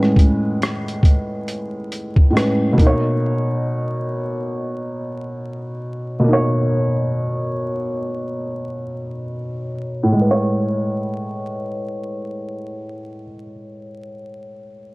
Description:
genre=lo-fi hip hop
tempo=69 BPM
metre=4/4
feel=swing 60% on 16ths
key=unclear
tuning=A4 = 436 Hz
part: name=felt-muted upright piano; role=accompaniment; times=0.0-14.9 s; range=A2 to C#5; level=-20 LUFS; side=equal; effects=cassette tape, low-pass filter
part: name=boom bap sampler-style drum kit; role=drums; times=0.0-3.0 s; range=hi-hat, kick drum, rim click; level=-15 LUFS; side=equal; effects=none
room=light reverb, small room ambience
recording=vinyl crackle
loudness=-18 LUFS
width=side -23 dB against mid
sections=0.0-10.2 A section; 10.2-13.6 B section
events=filter sweep on felt piano 0.0-10.2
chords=0.0 Amaj9; 2.8 Bmaj9; 10.2 Amaj9

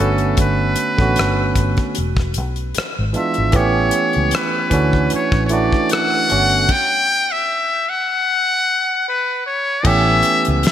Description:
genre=R&B, neo-soul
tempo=76 BPM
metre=4/4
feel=swing 54% on 16ths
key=unclear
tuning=A4 = 444 Hz
part: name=trumpet with metal mute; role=melody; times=0.0-10.7 s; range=A4 to G5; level=-18 LUFS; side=left 1 dB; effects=ping-pong delay
part: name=barky tine electric piano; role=accompaniment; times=0.0-10.7 s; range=D3 to G4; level=-20 LUFS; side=right 3 dB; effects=overdrive
part: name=vintage muted fingered electric bass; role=bass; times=0.0-10.6 s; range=E1 to D2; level=-19 LUFS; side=equal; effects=none
part: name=damped 70s drum kit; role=drums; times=0.2-10.7 s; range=crash cymbal, hi-hat, kick drum, rim click, snare drum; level=-20 LUFS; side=left 1 dB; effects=gated reverb
room=moderate lush hall reverb, RT60 2.8 s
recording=bright 1980s-style digital production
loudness=-15 LUFS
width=side -10 dB against mid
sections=0.0-9.8 A section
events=stop 6.7-9.8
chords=0.0 Gmaj9#11; 2.0 E7b9; 3.5 A9; 4.7 Dmaj9; 6.3 Gmaj9#11; 8.3 N.C.; 9.8 A9

